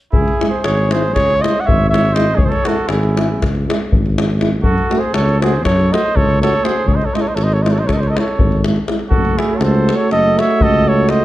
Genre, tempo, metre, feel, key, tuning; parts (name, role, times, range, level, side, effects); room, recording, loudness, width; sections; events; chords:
balkan folk, Balkan brass band; 241 BPM (eighths); 9/8; straight; C# harmonic minor; A4 = 442 Hz
mellow flugelhorn; melody; 0.1-11.2 s; G#4 to F#5; -18 LUFS; equal
mellow trumpet; second line; 0.1-11.2 s; E4 to D#5; -23 LUFS; right 5 dB
dark tuba; bass; 0.1-11.2 s; F#1 to F#2; -17 LUFS; equal
davul; percussion; 0.1-11.2 s; -19 LUFS; left 2 dB
mellow euphonium; accompaniment; 0.4-11.2 s; G#3 to A3; -23 LUFS; right 4 dB
mellow trombone; accompaniment; 0.4-11.2 s; E4 to F#4; -25 LUFS; left 5 dB
moderate recital hall reverb, RT60 1.5 s; close, detailed microphones; -12 LUFS; side -15 dB against mid
0.1-9.1 A section; 9.1-11.2 B section
0.1 C#m; 4.6 F#m; 6.9 C#m; 9.1 F#m